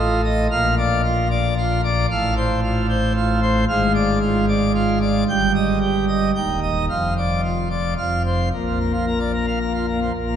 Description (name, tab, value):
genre	classical, organ toccata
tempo	113 BPM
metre	3/4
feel	straight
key	Bb major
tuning	A4 = 439 Hz
part	pipe organ, plenum	solo	0.0-10.4 s	Eb1 to G5	-18 LUFS	equal	none
room	wet cathedral reverb, RT60 5.0 s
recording	nothing above 10.3 kHz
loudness	-18 LUFS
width	side -9 dB against mid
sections	0.0-8.5 A section; 8.5-10.4 A section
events	none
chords	0.0 F7/A; 0.5 Bb; 2.1 F/A; 3.7 Ddim/Ab; 5.3 Eb/G; 6.3 Eb; 6.9 Dm/F; 8.0 F5; 8.5 Bb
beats	| 0.51 1.04 1.57 | 2.10 2.63 3.15 | 3.69 4.21 4.75 | 5.28 5.81 6.35 | 6.89 7.43 7.98 | 8.53 9.06 9.60 | 10.14